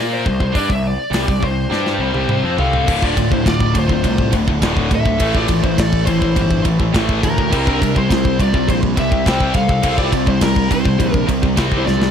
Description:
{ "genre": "heavy metal", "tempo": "104 BPM", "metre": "4/4", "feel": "straight", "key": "D minor", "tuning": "A4 = 442 Hz", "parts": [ { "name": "high-gain lead guitar", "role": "melody", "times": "0.0-12.1 s", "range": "Bb4 to G5", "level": "-22 LUFS", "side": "left 2 dB", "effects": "distortion, tape echo" }, { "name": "tight distorted guitar", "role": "riff", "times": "0.0-12.1 s", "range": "D2 to Bb4", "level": "-21 LUFS", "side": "left 11 dB", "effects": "distortion" }, { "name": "tight distorted guitar", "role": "riff", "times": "0.0-12.1 s", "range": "D2 to Bb4", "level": "-22 LUFS", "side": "right 10 dB", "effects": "distortion" }, { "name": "fuzz picked electric bass", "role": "bass", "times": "0.0-12.1 s", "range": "D1 to Bb2", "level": "-21 LUFS", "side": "equal", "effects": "overdrive" }, { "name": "tight metal drum kit", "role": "drums", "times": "0.3-12.1 s", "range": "crash cymbal, hi-hat, kick drum, ride cymbal, snare drum, toms", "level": "-19 LUFS", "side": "equal", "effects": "none" }, { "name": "dark smooth lead guitar", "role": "second line", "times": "2.6-12.1 s", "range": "D4 to C5", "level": "-27 LUFS", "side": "right 2 dB", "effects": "overdrive" }, { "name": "tight distorted guitar", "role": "riff", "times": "2.9-12.1 s", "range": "D2 to C4", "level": "-25 LUFS", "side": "right 1 dB", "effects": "distortion" } ], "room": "little or no reverb", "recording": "dark, warm production", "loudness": "-14 LUFS", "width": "side -8 dB against mid", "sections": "0.0-2.9 A section; 2.9-12.1 B section", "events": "drum fill 1.7-2.9, 11.9", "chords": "0.0 C5; 2.9 Dm; 5.2 Am; 7.5 C", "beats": "| 0.55 1.13 1.71 2.29 | 2.88 3.46 4.04 4.62 | 5.20 5.78 6.36 6.94 | 7.52 8.10 8.68 9.26 | 9.83 10.41 10.99 11.57" }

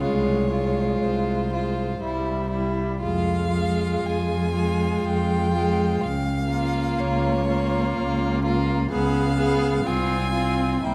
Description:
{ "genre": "classical, slow romantic movement for string quartet", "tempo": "60 BPM", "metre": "3/4", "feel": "rubato", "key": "F minor", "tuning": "A4 = 440 Hz", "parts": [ { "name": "clear violin", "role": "melody", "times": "0.0-10.9 s", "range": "C5 to Ab5", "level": "-34 LUFS", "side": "equal", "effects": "none" }, { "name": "clear violin", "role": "second line", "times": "0.0-10.9 s", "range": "E4 to Ab4", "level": "-31 LUFS", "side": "equal", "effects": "none" }, { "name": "clear viola", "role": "accompaniment", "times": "0.0-10.9 s", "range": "G3 to C4", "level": "-29 LUFS", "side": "equal", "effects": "none" }, { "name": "rich cello", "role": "bass", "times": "0.0-10.9 s", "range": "C2 to F2", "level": "-27 LUFS", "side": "equal", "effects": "none" } ], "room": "wet concert hall reverb, RT60 1.9 s", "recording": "dark, warm production", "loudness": "-23 LUFS", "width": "mono", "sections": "0.0-10.9 A section", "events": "none", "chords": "0.0 Fm/C; 2.0 C; 3.0 Fm; 6.0 Bbm/Db; 8.9 Db7; 9.9 Fm/C", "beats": "| 0.03 1.02 2.02 | 3.03 4.04 5.05 | 6.04 7.01 7.99 | 8.92 9.86 10.84" }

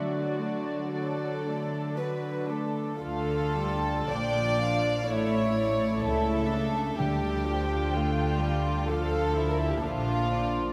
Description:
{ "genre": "classical, slow romantic movement for symphony orchestra", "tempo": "54-65 BPM", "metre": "4/4", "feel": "rubato", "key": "D major, D minor from 3.0 s", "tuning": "A4 = 441 Hz", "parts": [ { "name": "dark symphonic violin section", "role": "melody", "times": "0.0-10.7 s", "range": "D5 to A5", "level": "-40 LUFS", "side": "equal", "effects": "none" }, { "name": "warm symphonic violin section", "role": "second line", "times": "0.0-10.7 s", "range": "F4 to D5", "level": "-33 LUFS", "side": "equal", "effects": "none" }, { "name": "warm studio viola section", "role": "accompaniment", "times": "0.0-10.7 s", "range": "F3 to F#4", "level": "-34 LUFS", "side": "equal", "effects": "none" }, { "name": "mellow French horn section", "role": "sustained chords", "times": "0.0-2.7 s", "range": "F#3 to D4", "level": "-39 LUFS", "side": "equal", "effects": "none" }, { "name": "warm chamber cello section", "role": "bass", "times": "0.0-10.7 s", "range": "A2 to D3", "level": "-36 LUFS", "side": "equal", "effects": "none" }, { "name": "dark symphonic double bass section", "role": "bass", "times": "3.0-10.7 s", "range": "A1 to D2", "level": "-35 LUFS", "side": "equal", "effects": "none" }, { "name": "timpani", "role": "percussion", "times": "7.0-8.4 s", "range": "D3", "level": "-38 LUFS", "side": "equal", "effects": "none" } ], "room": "wet concert hall reverb, RT60 2.5 s", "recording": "none", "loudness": "-28 LUFS", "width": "mono", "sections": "0.0-3.0 A section; 3.0-10.7 B section", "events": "none", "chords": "0.0 D; 3.0 Dm; 5.1 A; 7.0 Dm", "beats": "0.94 1.97 | 3.03 4.11 5.09 6.05 | 7.00 7.95 8.88 9.84" }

